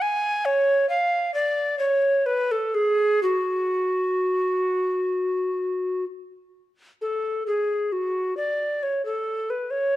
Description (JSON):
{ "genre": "classical, baroque-style fantasia for unaccompanied recorder", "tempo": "61-69 BPM", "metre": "4/4", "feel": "rubato", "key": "F# minor", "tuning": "A4 = 440 Hz", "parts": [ { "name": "mellow hollow tenor recorder", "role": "solo", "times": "0.0-10.0 s", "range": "F#4 to G#5", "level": "-22 LUFS", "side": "equal", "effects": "none" } ], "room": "moderate recital hall reverb, RT60 1.5 s", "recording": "dark, warm production", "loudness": "-22 LUFS", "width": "side -15 dB against mid", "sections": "0.0-7.0 A section; 7.0-10.0 B section", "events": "none", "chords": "none" }